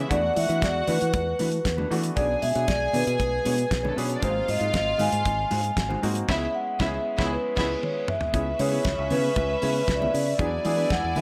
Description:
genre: disco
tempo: 117 BPM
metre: 4/4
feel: straight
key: unclear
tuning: A4 = 440 Hz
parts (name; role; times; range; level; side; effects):
- warm studio string section; second line; 0.0-11.2 s; A3 to G#5; -34 LUFS; equal; none
- warm concert grand piano; accompaniment; 0.0-11.2 s; E3 to G#4; -37 LUFS; equal; none
- fingered electric bass; bass; 0.0-11.2 s; G#1 to E3; -32 LUFS; equal; none
- vibraphone with soft mallets; melody; 0.1-11.2 s; B4 to G#5; -29 LUFS; equal; analog delay
- mellow electric guitar; accompaniment; 0.1-11.2 s; G#3 to C#5; -37 LUFS; equal; none
- damped 70s drum kit; drums; 0.1-11.2 s; crash cymbal, hi-hat, kick drum, snare drum, toms; -32 LUFS; equal; none
- congas; percussion; 0.4-11.2 s; none; -39 LUFS; equal; none
room: light reverb, small room reverb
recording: none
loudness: -25 LUFS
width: mono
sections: 0.0-8.3 A section; 8.3-11.2 B section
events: band accent 6.3-8.3; drum fill 7.8-8.3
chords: 0.1 E9sus4; 2.2 Bm69; 4.2 G#7; 6.3 C#m7; 10.4 E7

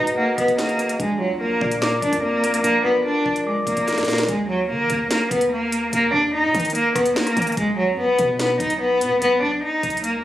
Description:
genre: hip hop, drill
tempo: 146 BPM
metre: 4/4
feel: half-time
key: Eb harmonic minor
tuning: A4 = 440 Hz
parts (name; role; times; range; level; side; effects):
- rich cello; melody; 0.0-10.2 s; Gb3 to Eb4; -19 LUFS; equal; low-pass filter, slapback echo
- mellow tine electric piano; accompaniment; 0.0-4.3 s; D4 to D6; -23 LUFS; left 1 dB; medium stereo tremolo, low-pass filter
- long sustained 808-style bass; bass; 0.0-10.2 s; Ab1 to Eb3; -32 LUFS; equal; none
- drill drum kit; drums; 0.1-10.1 s; hi-hat, kick drum, rim click, snare drum; -26 LUFS; equal; none
room: light reverb, digital ambience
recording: recorded on a phone in the room, club reverb, compression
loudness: -18 LUFS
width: side -13 dB against mid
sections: 0.0-4.3 A section; 4.3-10.2 B section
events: drum fill 3.9-4.3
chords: 0.0 Abm7; 1.0 Bb; 4.3 Eb5; 7.6 B

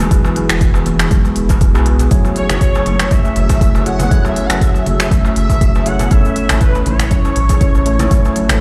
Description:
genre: afro house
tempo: 120 BPM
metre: 4/4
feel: swing 54% on 16ths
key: F# minor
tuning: A4 = 439 Hz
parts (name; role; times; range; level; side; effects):
- warm analog pad; sustained chords; 0.0-8.6 s; E3 to G#4; -30 LUFS; equal; none
- marimba with soft mallets; arpeggios; 0.0-8.6 s; E3 to A4; -24 LUFS; equal; sidechain pumping
- bright tine electric piano; stabs; 0.0-8.6 s; A3 to C#5; -26 LUFS; equal; sidechain pumping, dub echo
- warm sub bass; bass; 0.0-8.6 s; E1 to B1; -20 LUFS; equal; sidechain pumping
- afro-pop drum kit; drums; 0.0-8.6 s; finger snaps, hi-hat, shaker; -24 LUFS; equal; none
- darbuka; percussion; 0.0-8.6 s; none; -28 LUFS; equal; none
- electronic kick drum; drums; 0.1-8.2 s; none; -16 LUFS; equal; none
- congas; percussion; 0.1-8.6 s; none; -27 LUFS; equal; none
- expressive synth lead; melody; 2.4-8.6 s; B4 to F#5; -24 LUFS; equal; ensemble chorus, cassette tape, dub echo
room: little or no reverb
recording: played on a big sound system in a bare room, large studio reverb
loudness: -13 LUFS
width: mono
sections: 0.0-8.6 A section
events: none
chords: 0.0 Eadd9; 2.1 F#m7; 6.1 A

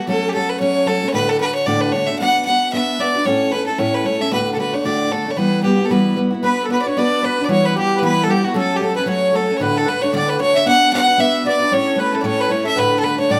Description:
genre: celtic folk, Celtic reel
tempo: 227 BPM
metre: 4/4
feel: swing 56% on 8ths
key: unclear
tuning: A4 = 440 Hz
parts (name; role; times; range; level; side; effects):
- bright fiddle; melody; 0.0-13.4 s; F#4 to F#5; -20 LUFS; equal; none
- picked steel-string acoustic guitar; accompaniment; 0.0-13.4 s; D2 to B4; -21 LUFS; equal; none
- accordion; second line; 6.4-13.4 s; F#4 to F#5; -24 LUFS; equal; none
room: moderate large studio reverb, RT60 1.2 s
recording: band playing live in one room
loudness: -17 LUFS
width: mono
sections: 0.0-6.4 A section; 6.4-13.4 A section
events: none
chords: 0.1 F#m; 1.1 D; 2.2 Bm; 3.3 A; 4.3 D; 5.4 Emadd9; 6.4 Bm; 7.5 Emadd9; 8.5 F#m; 9.6 D; 10.7 Bm; 11.7 A; 12.8 D

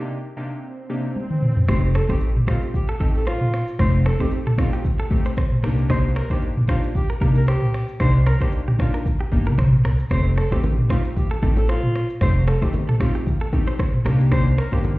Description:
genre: afrobeats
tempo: 114 BPM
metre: 4/4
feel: swing 55% on 16ths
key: unclear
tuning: A4 = 439 Hz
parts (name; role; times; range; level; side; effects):
- glassy digital keys; accompaniment; 0.0-14.9 s; C3 to G4; -28 LUFS; left 2 dB; chorus
- swell; sound effects; 0.3-1.7 s; none; -35 LUFS; right 3 dB; none
- afro-pop drum kit; drums; 1.2-15.0 s; finger snaps, hi-hat, kick drum, rim click, shaker, toms; -21 LUFS; equal; none
- breathy alto saxophone; melody; 1.7-14.8 s; F4 to C5; -30 LUFS; equal; tape echo
- direct-recorded clean electric guitar; riff; 1.7-14.8 s; G4 to Eb5; -34 LUFS; right 2 dB; tape echo
- upright bass; bass; 1.7-15.0 s; F1 to C3; -19 LUFS; equal; none
- congas and bongos; percussion; 10.1-15.0 s; none; -30 LUFS; left 2 dB; none
room: digital ambience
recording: heard muffled through a wall, stone room reverb, EQ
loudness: -18 LUFS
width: side -19 dB against mid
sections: 0.0-1.7 A section; 1.7-15.0 B section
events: swell 0.3-1.7; drum fill 1.2-1.7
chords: 0.0 Cm7; 1.7 F7; 5.6 Cm7; 10.1 F7; 14.1 Cm7

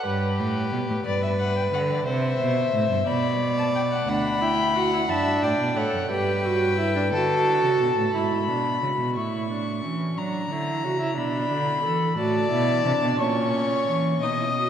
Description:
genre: classical, baroque-style fugue for string quartet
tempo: 59 BPM (dotted quarters)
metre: 6/8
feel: straight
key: G major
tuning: A4 = 440 Hz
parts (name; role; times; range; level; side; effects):
- dark violin; melody; 0.0-14.7 s; B4 to D#6; -27 LUFS; left 4 dB; none
- warm violin; second line; 0.0-8.1, 12.2-14.7 s; G4 to G5; -27 LUFS; left 1 dB; none
- rich cello; bass; 0.1-14.7 s; D2 to F#3; -27 LUFS; right 2 dB; none
- warm viola; accompaniment; 4.1-14.7 s; C#4 to A4; -26 LUFS; right 3 dB; none
room: wet church reverb, RT60 3.6 s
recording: none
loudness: -21 LUFS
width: side -9 dB against mid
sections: 0.0-8.1 A section; 8.1-14.7 B section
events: none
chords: 0.1 G; 2.1 C; 3.1 G/B (rootless); 4.1 D; 5.1 D/F#; 6.1 G; 7.1 D; 8.1 E7/G#; 9.2 A; 10.2 F#7; 11.2 Bm; 12.2 F#m/A; 13.2 A#dim

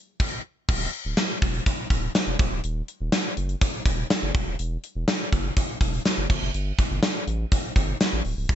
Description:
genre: 1980s-style pop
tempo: 123 BPM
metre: 4/4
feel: straight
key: unclear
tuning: A4 = 440 Hz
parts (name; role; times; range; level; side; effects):
- gated 80s drum kit; drums; 0.2-8.6 s; crash cymbal, hi-hat, kick drum, snare drum, tambourine; -23 LUFS; equal; gated reverb
- saturated sub bass; bass; 0.7-8.6 s; C#1 to A1; -28 LUFS; equal; none
room: little or no reverb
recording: nothing above 7.9 kHz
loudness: -23 LUFS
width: side -10 dB against mid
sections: 0.7-8.6 A section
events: none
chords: none

